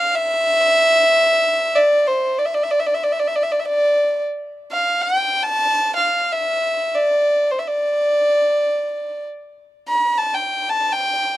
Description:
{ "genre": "Arabic maqam ensemble", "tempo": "free time", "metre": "none", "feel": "none", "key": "unclear", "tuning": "A4 = 440 Hz", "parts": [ { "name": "warm violin", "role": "solo", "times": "0.0-11.4 s", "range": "C5 to B5-45c", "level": "-16 LUFS", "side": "equal", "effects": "none" } ], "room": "small room ambience", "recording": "dry, close 1970s-style studio recording", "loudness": "-16 LUFS", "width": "side -15 dB against mid", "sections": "0.0-11.4 A section", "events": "none", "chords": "none", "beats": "free time" }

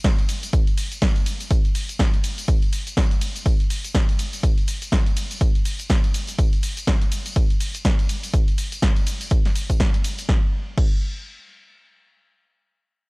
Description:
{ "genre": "house", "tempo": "123 BPM", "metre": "4/4", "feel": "swing 58% on 16ths", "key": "none", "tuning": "none", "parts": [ { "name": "electronic kick drum", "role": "drums", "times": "0.0-10.9 s", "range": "none", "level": "-19 LUFS", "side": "equal", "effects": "none" }, { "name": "punchy analog drum machine", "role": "drums", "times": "0.0-10.9 s", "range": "cabasa, crash cymbal, hi-hat, ride cymbal, snare drum", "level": "-27 LUFS", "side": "equal", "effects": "none" }, { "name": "tambourine", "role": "percussion", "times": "0.0-10.3 s", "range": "none", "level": "-38 LUFS", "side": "left 1 dB", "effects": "none" } ], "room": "digital ambience", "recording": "dry, gritty hardware recording, cassette tape", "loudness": "-19 LUFS", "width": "side -28 dB against mid", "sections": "0.0-10.3 A section; 10.3-12.2 B section", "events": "drop 0.0-10.3", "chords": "none", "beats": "0.04 | 0.53 1.02 1.51 2.00 | 2.48 2.97 3.46 3.95 | 4.43 4.92 5.41 5.90 | 6.39 6.87 7.36 7.85 | 8.34 8.82 9.31 9.80 | 10.29 10.78" }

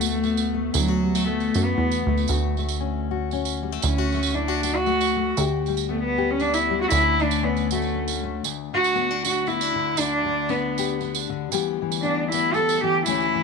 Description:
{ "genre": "acoustic folk duo or small band", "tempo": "117 BPM", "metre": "3/4", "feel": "swing 56% on 8ths", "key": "D major", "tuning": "A4 = 439 Hz", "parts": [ { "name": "warm cello", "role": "melody", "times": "0.0-13.4 s", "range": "F#3 to A4", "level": "-23 LUFS", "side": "right 2 dB", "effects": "tape echo" }, { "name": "fingerpicked steel-string acoustic guitar", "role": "accompaniment", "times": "0.0-13.4 s", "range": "D2 to G4", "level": "-26 LUFS", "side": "left 13 dB", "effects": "none" }, { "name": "plucky analog bass", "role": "bass", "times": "0.0-8.4 s", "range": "D2 to F#2", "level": "-26 LUFS", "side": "right 3 dB", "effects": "none" }, { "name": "tambourine", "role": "percussion", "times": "0.0-13.3 s", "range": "none", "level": "-30 LUFS", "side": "right 18 dB", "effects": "none" } ], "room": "light reverb", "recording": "1960s-style stereo with parts hard left and right", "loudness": "-21 LUFS", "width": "side -5 dB against mid", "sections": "0.0-8.4 A section; 8.4-13.4 B section", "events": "cello solo 0.0-8.4", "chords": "0.0 Bm7/D; 2.3 Dmaj7; 5.4 G/D; 6.9 Dmaj7; 8.4 D; 10.0 G/D; 11.5 Em7/D", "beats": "0.23 | 0.74 1.26 1.77 | 2.29 2.80 3.31 | 3.83 4.34 4.85 | 5.37 5.88 6.39 | 6.90 7.42 7.93 | 8.44 8.95 9.46 | 9.98 10.49 11.00 | 11.51 12.03 12.54 | 13.05" }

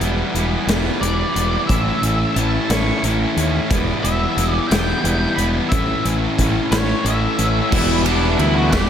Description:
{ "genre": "quiet-loud alternative rock", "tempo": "60 BPM (dotted quarters)", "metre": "6/8", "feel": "straight", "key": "E dorian", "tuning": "A4 = 440 Hz", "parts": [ { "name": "thick fuzz guitar", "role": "riff", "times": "0.0-8.9 s", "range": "A2 to E4", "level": "-20 LUFS", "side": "equal", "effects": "distortion, slapback echo" }, { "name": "growling fingered electric bass", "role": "bass", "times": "0.0-8.9 s", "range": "E1 to D#2", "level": "-21 LUFS", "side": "equal", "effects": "overdrive" }, { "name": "big rock drum kit", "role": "drums", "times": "0.0-8.9 s", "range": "crash cymbal, hi-hat, kick drum, ride cymbal, snare drum", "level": "-23 LUFS", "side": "equal", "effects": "none" }, { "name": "octave-fuzz lead guitar", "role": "melody", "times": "1.0-8.9 s", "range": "D4 to C#6", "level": "-24 LUFS", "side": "equal", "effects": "distortion, slapback echo" }, { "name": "distorted electric guitar", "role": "riff", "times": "7.7-8.9 s", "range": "E3 to E4", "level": "-21 LUFS", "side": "right 1 dB", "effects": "distortion, slapback echo" } ], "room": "moderate lush hall reverb, RT60 1.8 s, small room ambience", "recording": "big arena sound", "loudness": "-16 LUFS", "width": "side -8 dB against mid", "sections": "0.0-7.7 A section; 7.7-8.9 B section", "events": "lead electric guitar solo 0.0-7.7", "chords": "0.0 Em; 1.7 A; 3.7 Em; 5.7 A; 7.7 Em", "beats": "0.68 | 1.69 2.70 | 3.71 4.71 | 5.72 6.72 | 7.72 8.72" }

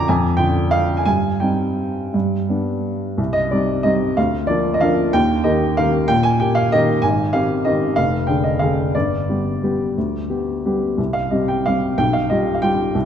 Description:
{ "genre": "classical, piano waltz", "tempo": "162-204 BPM", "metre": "3/4", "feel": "rubato", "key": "C minor", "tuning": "A4 = 438 Hz", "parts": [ { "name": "warm baby grand piano", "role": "solo", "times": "0.0-13.1 s", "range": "F1 to Ab5", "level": "-16 LUFS", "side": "equal", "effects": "none" } ], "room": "wet concert hall reverb, RT60 2.0 s", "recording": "dark, warm production", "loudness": "-16 LUFS", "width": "side -8 dB against mid", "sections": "0.0-3.2 A section; 3.2-13.1 B section", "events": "none", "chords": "0.0 Ddim/F; 1.1 Cm/G; 2.1 G; 3.2 Cm; 4.2 Bb/D; 5.1 Eb; 7.0 Abmaj7; 8.0 Ddim/F; 8.9 G; 11.0 C5; 12.0 G7/B", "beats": "| 0.07 0.38 0.72 | 1.06 1.42 1.78 | 2.14 2.49 2.84 | 3.19 3.52 3.85 | 4.17 4.49 4.82 | 5.14 5.46 5.78 | 6.09 6.40 6.72 | 7.03 7.33 7.66 | 7.97 8.28 8.61 | 8.95 9.28 9.63 | 9.96 10.29 10.64 | 10.98 11.32 11.66 | 11.98 12.30 12.63 | 12.95" }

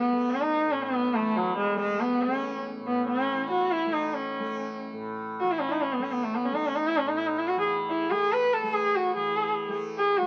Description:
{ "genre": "indian classical, Hindustani", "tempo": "143 BPM", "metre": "3/4", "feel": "straight", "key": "A raga yaman", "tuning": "A4 = 437 Hz", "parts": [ { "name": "warm sarangi", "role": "melody", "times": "0.0-10.3 s", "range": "F#3 to B4", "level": "-28 LUFS", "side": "equal", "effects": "none" }, { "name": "tanpura", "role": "drone", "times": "0.0-10.3 s", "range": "A2 to A3", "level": "-37 LUFS", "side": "equal", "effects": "none" } ], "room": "moderate club reverb, RT60 0.8 s", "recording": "very old 78 rpm record, vinyl crackle", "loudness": "-27 LUFS", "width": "mono", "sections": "0.0-9.2 A section; 9.2-10.3 B section", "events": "speeding up 0.0-10.3", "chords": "none", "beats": "| 0.32 0.75 1.18 | 1.60 2.03 2.45 | 2.88 3.30 3.72 | 4.14 4.56 4.99 | 5.40 5.82 6.24 | 6.66 7.08 7.49 | 7.91 8.32 8.74 | 9.15 9.56 9.98" }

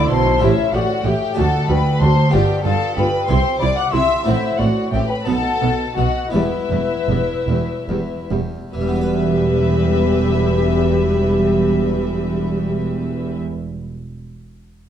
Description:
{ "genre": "classical, baroque-style concerto movement with solo episodes", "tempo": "46-63 BPM (dotted quarters)", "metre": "6/8", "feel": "straight", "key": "E minor", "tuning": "A4 = 442 Hz", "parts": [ { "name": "mellow hollow concert flute", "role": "melody", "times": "0.0-13.4 s", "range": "G4 to D6", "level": "-23 LUFS", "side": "left 4 dB", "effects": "none" }, { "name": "warm symphonic violin section", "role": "melody", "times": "0.0-13.4 s", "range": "E5 to F#6", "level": "-28 LUFS", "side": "left 5 dB", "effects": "none" }, { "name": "warm symphonic violin section", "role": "second line", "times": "0.0-13.4 s", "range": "E4 to F#5", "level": "-24 LUFS", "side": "left 4 dB", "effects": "none" }, { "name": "harpsichord", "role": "accompaniment", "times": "0.0-13.7 s", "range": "D2 to B4", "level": "-24 LUFS", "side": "right 1 dB", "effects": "none" }, { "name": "warm chamber viola section", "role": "accompaniment", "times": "0.0-13.4 s", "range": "G3 to G4", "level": "-24 LUFS", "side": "right 1 dB", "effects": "none" }, { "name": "rich chamber double bass section", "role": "bass", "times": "0.0-13.4 s", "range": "E1 to D2", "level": "-22 LUFS", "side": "right 2 dB", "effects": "none" }, { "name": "warm chamber cello section", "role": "bass", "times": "0.0-13.4 s", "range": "D2 to C3", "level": "-23 LUFS", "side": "right 3 dB", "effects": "none" } ], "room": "wet recital hall reverb, RT60 1.5 s", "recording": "dark, warm production, faint mains hum", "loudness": "-16 LUFS", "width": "side -9 dB against mid", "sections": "0.0-8.7 A section; 8.7-13.9 B section", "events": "slowing down 3.3-8.7", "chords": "0.4 A7; 1.4 D; 2.3 G7; 3.3 C; 4.3 F#dim/A; 5.3 B7; 6.3 Em", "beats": "| 0.41 1.37 | 2.33 3.29 | 4.26 5.26 | 6.33 7.48 | 8.73 10.03 | 11.33 12.62" }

